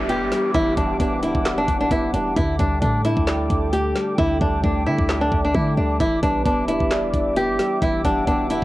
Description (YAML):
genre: hip hop, trap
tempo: 132 BPM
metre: 4/4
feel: half-time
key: E minor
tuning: A4 = 438 Hz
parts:
  - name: flamenco guitar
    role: melody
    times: 0.0-8.6 s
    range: D4 to G4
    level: -22 LUFS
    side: equal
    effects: cassette tape, tape echo
  - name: soft electric-piano-like synth keys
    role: accompaniment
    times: 0.0-8.6 s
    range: D3 to D5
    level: -26 LUFS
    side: left 2 dB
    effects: chorus, cassette tape
  - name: dark analog pad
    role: sustained chords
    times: 0.0-8.6 s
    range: G4 to D6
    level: -28 LUFS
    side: right 1 dB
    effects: chorus, cassette tape
  - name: clean 808-style bass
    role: bass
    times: 0.0-8.6 s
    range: D1 to D3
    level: -26 LUFS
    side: equal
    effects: none
  - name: downlifter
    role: sound effects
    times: 0.0-2.4 s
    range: none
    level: -34 LUFS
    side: right 1 dB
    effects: none
  - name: trap drum kit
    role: drums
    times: 0.1-8.6 s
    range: handclaps, hi-hat, kick drum, snare drum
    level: -25 LUFS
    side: equal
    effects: cassette tape
  - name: soft octave-layered synth lead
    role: second line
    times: 6.2-8.6 s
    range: B4 to G5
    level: -28 LUFS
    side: right 1 dB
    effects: chorus, phaser, cassette tape, tape echo
room: light reverb, digital ambience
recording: home recording on cassette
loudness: -18 LUFS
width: side -17 dB against mid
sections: 0.0-8.6 A section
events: hi-hats muted 4.2-6.0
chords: 0.0 Em7; 2.4 Dsus4; 6.0 Em7